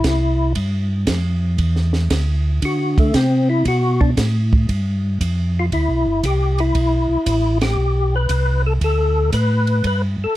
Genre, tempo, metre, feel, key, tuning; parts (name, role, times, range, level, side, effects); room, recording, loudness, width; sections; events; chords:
soul jazz organ trio; 116 BPM; 4/4; swing 68% on 8ths; G mixolydian; A4 = 440 Hz
percussive tonewheel organ; melody; 0.0-10.4 s; A3 to B4; -20 LUFS; left 2 dB; slow rotary speaker, chorus vibrato
mellow tonewheel organ; bass; 0.0-10.3 s; G1 to D3; -18 LUFS; equal; chorus vibrato, slow rotary speaker
compact cocktail drum kit; drums; 0.0-10.0 s; hi-hat, kick drum, ride cymbal, snare drum; -23 LUFS; right 2 dB
little or no reverb; dark, warm production; -16 LUFS; side -15 dB against mid
0.0-4.7 A section; 4.7-10.4 B section
tonewheel organ solo 0.0-4.7; band accent 7.5
0.0 C; 0.6 G5; 2.6 D5; 4.7 G13